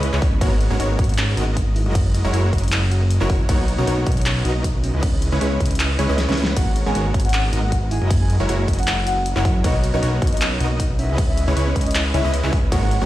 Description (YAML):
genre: future bass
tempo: 156 BPM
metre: 4/4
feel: swing 54% on 16ths, half-time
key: C# dorian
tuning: A4 = 440 Hz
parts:
  - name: thumb-piano-like synth pluck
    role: arpeggios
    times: 0.0-13.1 s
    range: A#3 to G#4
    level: -32 LUFS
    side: right 3 dB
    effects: chorus, sidechain pumping, dub echo
  - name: supersaw stab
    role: riff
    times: 0.0-13.1 s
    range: G#3 to D#5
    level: -25 LUFS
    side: equal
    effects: cassette tape, sidechain pumping, dub echo
  - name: fat analog bass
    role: bass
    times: 0.0-13.1 s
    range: F#1 to F#2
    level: -20 LUFS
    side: equal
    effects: sidechain pumping
  - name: big-room dance drum kit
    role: drums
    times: 0.0-13.0 s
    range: crash cymbal, handclaps, hi-hat, snare drum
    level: -27 LUFS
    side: equal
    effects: none
  - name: electronic kick drum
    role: drums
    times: 0.2-12.8 s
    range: none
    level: -20 LUFS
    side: equal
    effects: none
  - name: soft octave-layered synth lead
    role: melody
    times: 6.6-13.1 s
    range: D#5 to G#5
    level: -27 LUFS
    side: left 2 dB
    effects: chorus, phaser, sidechain pumping, ping-pong delay
room: little or no reverb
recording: played on a big sound system in a bare room, stone room reverb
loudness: -17 LUFS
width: side -15 dB against mid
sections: 0.0-13.1 A section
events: kick drops out 5.8-6.6; drum fill 6.2-6.6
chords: 0.4 G#m11; 1.8 F#9; 3.5 Bmaj9; 5.0 C#m7; 6.6 G#m11; 7.9 F#9; 9.6 Bmaj9; 11.2 C#m7